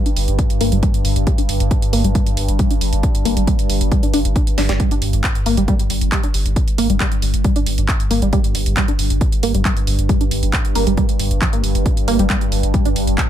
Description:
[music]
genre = driving peak-time techno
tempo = 136 BPM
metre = 4/4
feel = straight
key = G minor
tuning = A4 = 440 Hz
[part]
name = tight sequenced synth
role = riff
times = 0.0-12.9 s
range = F3 to D4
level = -22 LUFS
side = equal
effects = chorus, sidechain pumping, digital delay
[part]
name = deep dark ambient pad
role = drone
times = 0.0-13.3 s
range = G2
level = -23 LUFS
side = equal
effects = chorus, built-in reverb, sidechain pumping
[part]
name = techno drum kit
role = drums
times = 0.1-13.3 s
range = handclaps, hi-hat, snare drum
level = -24 LUFS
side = right 2 dB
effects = sidechain pumping on hats
[part]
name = saturated sub bass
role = bass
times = 0.2-13.2 s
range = G1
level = -19 LUFS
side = equal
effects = sidechain pumping, low-pass filter
[part]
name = electronic kick drum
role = drums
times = 0.4-13.3 s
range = none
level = -18 LUFS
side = equal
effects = none
[sound]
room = little or no reverb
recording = none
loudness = -15 LUFS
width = side -11 dB against mid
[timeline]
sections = 0.0-13.3 A section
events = filter sweep on synth arpeggio sound 0.0-13.3; drum fill 4.6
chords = 0.0 G5

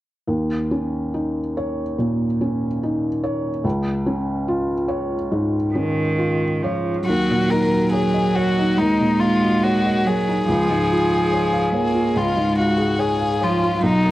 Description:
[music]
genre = neoclassical piano and strings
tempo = 71 BPM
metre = 4/4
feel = rubato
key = Eb minor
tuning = A4 = 440 Hz
[part]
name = felt-muted upright piano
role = accompaniment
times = 0.3-14.1 s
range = B1 to F5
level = -20 LUFS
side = equal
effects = none
[part]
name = rich cello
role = second line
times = 5.7-14.1 s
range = Eb3 to Bb3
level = -21 LUFS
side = right 2 dB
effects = none
[part]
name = warm violin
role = melody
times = 7.1-14.1 s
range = Eb4 to Bb4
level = -21 LUFS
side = left 2 dB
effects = none
[sound]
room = wet spring reverb, RT60 1.2 s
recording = worn, warbling old tape, cassette tape, warbly pitch drift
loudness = -18 LUFS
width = side -16 dB against mid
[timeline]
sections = 0.3-7.1 A section; 7.1-14.1 B section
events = none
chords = 0.3 Eb5; 3.6 Db; 7.1 Ebm7; 10.5 Db

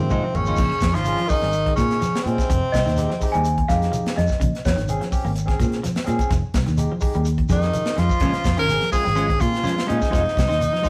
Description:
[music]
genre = afrobeat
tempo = 126 BPM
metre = 4/4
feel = straight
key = Bb dorian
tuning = A4 = 439 Hz
[part]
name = edgy tenor saxophone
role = melody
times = 0.0-3.6, 7.5-10.9 s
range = C4 to Bb4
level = -26 LUFS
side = equal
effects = none
[part]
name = growling tenor saxophone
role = second line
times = 0.0-3.6, 7.5-8.6 s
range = C3 to F3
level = -34 LUFS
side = equal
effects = none
[part]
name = barky tine electric piano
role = accompaniment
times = 0.0-10.1 s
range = F3 to Ab4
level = -33 LUFS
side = equal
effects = overdrive
[part]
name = electric guitar at the edge of break-up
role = arpeggios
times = 0.0-10.9 s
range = C3 to Bb3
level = -34 LUFS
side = equal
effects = none
[part]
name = fingered electric bass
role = bass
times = 0.0-10.7 s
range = F1 to Bb2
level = -25 LUFS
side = equal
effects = none
[part]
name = clean electric guitar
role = stabs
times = 0.1-0.6, 8.2-10.9 s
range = Ab3 to C5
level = -30 LUFS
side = equal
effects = none
[part]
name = tight funk drum kit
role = drums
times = 0.1-10.9 s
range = crash cymbal, hi-hat, kick drum, snare drum, toms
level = -27 LUFS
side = equal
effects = none
[part]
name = shekere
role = percussion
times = 0.1-10.9 s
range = none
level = -34 LUFS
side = equal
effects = none
[part]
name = small celesta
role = second line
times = 2.7-5.6 s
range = Db5 to Ab5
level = -28 LUFS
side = equal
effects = none
[sound]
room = wet studio reverb, RT60 0.7 s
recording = rough rehearsal-room recording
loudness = -21 LUFS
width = mono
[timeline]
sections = 0.6-10.9 A section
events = drum fill 0.0-0.6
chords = 0.0 Ab6; 0.6 Bbm9; 2.5 Fm7; 4.4 Bbm9; 6.3 Fm7; 8.2 Bbm9; 10.1 Fm7

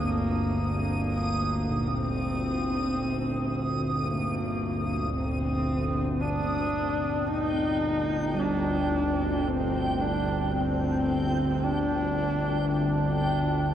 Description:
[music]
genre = dark ambient drone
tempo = 55 BPM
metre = 4/4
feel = straight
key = G minor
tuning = A4 = 438 Hz
[part]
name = dark horsehead fiddle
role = melody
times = 0.0-13.7 s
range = Bb3 to Eb4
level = -28 LUFS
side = equal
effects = tape echo
[part]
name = bronze singing bowl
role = arpeggios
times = 0.0-13.7 s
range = G2 to F4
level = -34 LUFS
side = right 1 dB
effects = tape echo
[part]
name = bowed-like drone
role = drone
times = 0.0-13.7 s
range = G1 to D2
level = -29 LUFS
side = equal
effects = built-in reverb
[part]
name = backwards swelling texture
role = texture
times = 0.0-13.7 s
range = G5 to Eb6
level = -34 LUFS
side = right 1 dB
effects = built-in reverb
[part]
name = deep dark ambient pad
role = sustained chords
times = 10.0-13.7 s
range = G3 to D5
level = -44 LUFS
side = right 3 dB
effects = none
[sound]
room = wet cathedral reverb, RT60 7.0 s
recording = worn, warbling old tape, cassette tape, warbly pitch drift, nothing above 10.6 kHz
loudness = -25 LUFS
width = side -10 dB against mid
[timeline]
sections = 0.0-6.2 A section; 6.2-13.7 B section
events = none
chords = 0.0 Eb/G; 6.2 Gm

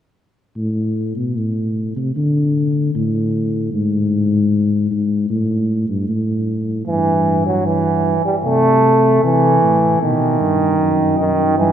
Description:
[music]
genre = classical, imitative canzona for brass ensemble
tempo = 76 BPM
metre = 4/4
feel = straight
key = unclear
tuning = A4 = 440 Hz
[part]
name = dark tuba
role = bass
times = 0.6-11.7 s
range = F#2 to D3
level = -17 LUFS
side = left 1 dB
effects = none
[part]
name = clear trombone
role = accompaniment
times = 6.9-11.7 s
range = D#3 to A3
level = -14 LUFS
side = right 2 dB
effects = none
[sound]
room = wet cathedral reverb, RT60 4.3 s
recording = none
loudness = -14 LUFS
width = side -9 dB against mid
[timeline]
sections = 0.6-11.7 A section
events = none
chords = 0.6 Am; 2.2 D5; 3.7 N.C.; 5.3 Gsus2; 6.9 Em/G; 8.4 Am/C; 10.0 B

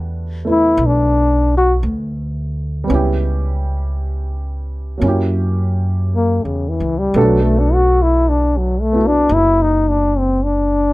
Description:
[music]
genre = jazz ballad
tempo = 56 BPM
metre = 4/4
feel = swing 69% on 8ths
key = unclear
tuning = A4 = 440 Hz
[part]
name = dark baby grand piano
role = accompaniment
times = 0.0-10.9 s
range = F#3 to A4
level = -21 LUFS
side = right 2 dB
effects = none
[part]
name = upright bass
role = bass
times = 0.0-10.9 s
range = F#1 to F#2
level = -18 LUFS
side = equal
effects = none
[part]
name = mellow trombone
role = melody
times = 0.5-10.9 s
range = C#3 to F#4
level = -15 LUFS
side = left 2 dB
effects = none
[sound]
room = little or no reverb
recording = close, detailed microphones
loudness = -14 LUFS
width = side -19 dB against mid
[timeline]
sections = 0.0-10.9 A section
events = trombone solo 0.0-10.9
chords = 0.0 Em11; 2.9 C#m7b5; 5.0 F#7b9; 7.2 Bm7

